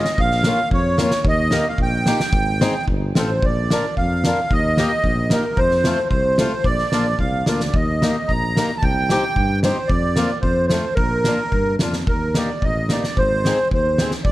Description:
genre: alpine folk, alpine dance band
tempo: 111 BPM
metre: 2/4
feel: rubato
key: Bb major from 3.4 s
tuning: A4 = 440 Hz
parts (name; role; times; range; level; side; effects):
- accordion; melody; 0.0-14.3 s; Bb4 to Bb5; -21 LUFS; right 1 dB; light tremolo tuning
- picked swing-style acoustic guitar; accompaniment; 0.0-14.1 s; A3 to Bb4; -25 LUFS; left 2 dB; none
- loose indie drum kit; drums; 0.0-14.3 s; kick drum, snare drum; -22 LUFS; equal; none
- mellow tuba; bass; 0.2-14.3 s; G1 to G2; -23 LUFS; equal; none
room: light reverb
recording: none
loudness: -16 LUFS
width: side -16 dB against mid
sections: 0.0-3.4 A section; 3.4-12.1 B section; 12.1-14.3 C section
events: none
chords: 0.2 Bbm; 1.2 Eb; 2.3 Ab; 2.9 F; 3.4 Bb; 4.5 Eb; 5.6 F; 6.7 Bb; 7.7 Eb; 8.8 Cm; 9.9 Fsus4; 10.4 F; 11.0 Bb; 12.1 Eb; 13.2 Ab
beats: | 0.18 0.72 | 1.25 1.79 | 2.33 2.88 | 3.43 3.98 | 4.52 5.05 | 5.58 6.12 | 6.65 7.20 | 7.75 8.30 | 8.84 9.37 | 9.90 10.44 | 10.98 11.53 | 12.08 12.63 | 13.18 13.72 | 14.26

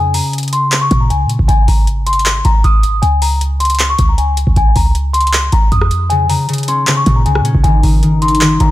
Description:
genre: hip hop, trap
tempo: 156 BPM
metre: 4/4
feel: half-time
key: Bb minor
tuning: A4 = 439 Hz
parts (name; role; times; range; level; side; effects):
- celesta; melody; 0.0-8.7 s; Ab5 to Eb6; -16 LUFS; left 2 dB; low-pass filter
- concert harp; accompaniment; 0.0-2.7, 6.1-8.7 s; Db3 to Eb4; -17 LUFS; left 1 dB; low-pass filter
- clean 808-style bass; bass; 0.0-8.7 s; Ab1 to Bb2; -15 LUFS; equal; none
- booming analog drum machine; drums; 0.1-8.7 s; handclaps, hi-hat, kick drum, rim click; -14 LUFS; equal; none
room: studio reverb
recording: none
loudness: -10 LUFS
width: side -15 dB against mid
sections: 0.0-8.7 A section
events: break 0.0-6.1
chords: 0.0 Bbm; 1.5 Ab5; 3.0 Bbm7/Db (rootless); 4.6 Bbm; 7.6 Ab5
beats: 0.33 0.72 1.10 | 1.49 1.87 2.26 2.64 | 3.03 3.41 3.79 4.18 | 4.56 4.95 5.33 5.72 | 6.10 6.49 6.87 7.26 | 7.64 8.03 8.41

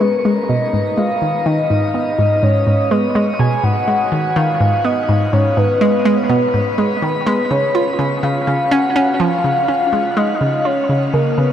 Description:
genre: ambient, sequencer-driven space music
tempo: 124 BPM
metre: 4/4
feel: straight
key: G# dorian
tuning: A4 = 440 Hz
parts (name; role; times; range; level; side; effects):
- soft octave-layered synth lead; melody; 0.0-11.5 s; A#4 to G#5; -17 LUFS; left 1 dB; chorus, phaser, tape echo
- hollow square pluck; riff; 0.0-11.5 s; G#2 to E#4; -16 LUFS; equal; chorus, phaser, tape echo
room: wet shimmer reverb, RT60 7.9 s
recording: none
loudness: -14 LUFS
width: side -10 dB against mid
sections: 0.0-11.5 A section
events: none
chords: 0.0 G#m; 7.3 C#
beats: 0.01 0.49 0.97 | 1.46 1.94 2.43 2.91 | 3.40 3.88 4.36 4.85 | 5.33 5.81 6.30 6.78 | 7.27 7.75 8.23 8.72 | 9.20 9.69 10.17 10.65 | 11.14

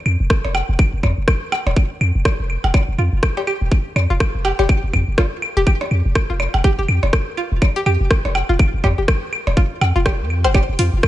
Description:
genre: minimal techno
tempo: 123 BPM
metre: 4/4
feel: swing 59% on 16ths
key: unclear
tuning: A4 = 440 Hz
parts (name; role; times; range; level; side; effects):
- punchy sub bass; bass; 0.1-11.0 s; Eb1 to F2; -18 LUFS; equal; sidechain pumping
- claves and percussion blips; percussion; 0.1-11.1 s; none; -23 LUFS; equal; overdrive, studio reverb
- electronic kick drum; drums; 0.3-11.1 s; none; -16 LUFS; equal; studio reverb
- garage drum kit; drums; 0.3-11.1 s; hi-hat, rim click; -25 LUFS; left 1 dB; studio reverb
- string-like resonator pluck; riff; 3.0-10.8 s; F4 to C5; -24 LUFS; equal; chorus, sidechain pumping, digital delay
room: digital ambience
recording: nothing above 10.9 kHz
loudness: -15 LUFS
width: side -14 dB against mid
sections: 0.0-11.1 A section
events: none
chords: 0.0 F5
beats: 0.30 | 0.79 1.28 1.76 2.25 | 2.74 3.23 3.72 4.20 | 4.69 5.18 5.67 6.16 | 6.64 7.13 7.62 8.11 | 8.59 9.08 9.57 10.06 | 10.55 11.03

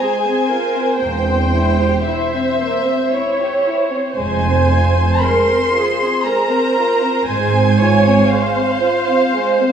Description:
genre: classical, slow romantic movement for string orchestra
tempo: 58 BPM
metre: 3/4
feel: rubato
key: F minor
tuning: A4 = 440 Hz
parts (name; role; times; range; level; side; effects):
- warm studio violin section; melody; 0.0-9.7 s; E5 to C6; -20 LUFS; left 1 dB; none
- rich studio violin section; second line; 0.0-9.7 s; Ab3 to C5; -20 LUFS; equal; none
- warm studio viola section; accompaniment; 0.0-9.7 s; Ab4 to Db5; -18 LUFS; right 2 dB; none
- clear studio cello section; bass; 1.0-8.2 s; E2 to Ab2; -20 LUFS; right 3 dB; none
- warm studio double bass section; bass; 1.0-8.2 s; E1 to Ab1; -20 LUFS; right 2 dB; none
room: wet scoring stage reverb, RT60 1.7 s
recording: small room ambience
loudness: -13 LUFS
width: side -8 dB against mid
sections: 0.0-9.7 A section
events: none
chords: 0.0 Fm; 1.0 C/E; 4.2 Fm; 7.3 Fm/Ab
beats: | 1.01 2.06 3.12 | 4.18 5.23 6.26 | 7.29 8.32 9.34

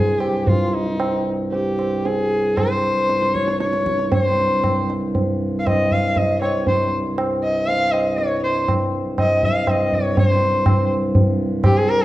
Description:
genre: indian classical, Hindustani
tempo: 113-124 BPM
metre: 3/4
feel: straight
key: C raga bhairavi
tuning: A4 = 440 Hz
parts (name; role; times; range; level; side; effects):
- warm sarangi; melody; 0.0-12.0 s; Eb4+27c to F5; -20 LUFS; equal; none
- pedal harmonium; drone; 0.0-12.0 s; C2 to G2; -24 LUFS; equal; none
- tabla; percussion; 0.2-11.8 s; none; -20 LUFS; right 1 dB; none
room: wet recital hall reverb, RT60 1.4 s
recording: dark, warm production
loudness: -17 LUFS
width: side -15 dB against mid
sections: 0.0-10.2 A section; 10.2-12.0 B section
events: speeding up 0.0-12.0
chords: none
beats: 0.46 | 0.99 1.52 2.04 | 2.56 3.09 3.60 | 4.12 4.64 5.15 | 5.66 6.17 6.68 | 7.18 7.68 8.19 | 8.69 9.18 9.68 | 10.17 10.66 11.15 | 11.64

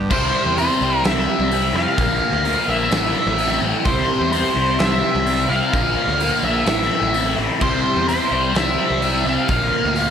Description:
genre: quiet-loud alternative rock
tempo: 128 BPM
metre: 4/4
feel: straight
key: C mixolydian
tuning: A4 = 441 Hz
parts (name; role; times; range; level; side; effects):
- fuzz picked electric bass; bass; 0.0-10.1 s; A1 to F2; -24 LUFS; equal; overdrive
- octave-fuzz lead guitar; melody; 0.1-10.1 s; C5 to F5; -21 LUFS; equal; distortion, slapback echo
- biting overdriven guitar; riff; 0.1-10.1 s; A2 to F4; -20 LUFS; left 1 dB; phaser, slapback echo
- big rock drum kit; drums; 0.1-10.1 s; crash cymbal, hi-hat, kick drum, snare drum; -25 LUFS; right 1 dB; none
room: moderate lush hall reverb, RT60 2.4 s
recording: big arena sound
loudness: -16 LUFS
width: side -8 dB against mid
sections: 0.1-10.1 A section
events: none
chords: 0.1 C; 2.0 Bb; 2.9 Am; 3.9 C; 5.7 Bb; 6.7 Am; 7.6 C; 9.5 Bb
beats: | 0.11 0.58 1.05 1.52 | 1.99 2.45 2.92 3.39 | 3.86 4.33 4.80 5.27 | 5.74 6.21 6.67 7.14 | 7.61 8.08 8.55 9.02 | 9.49 9.96

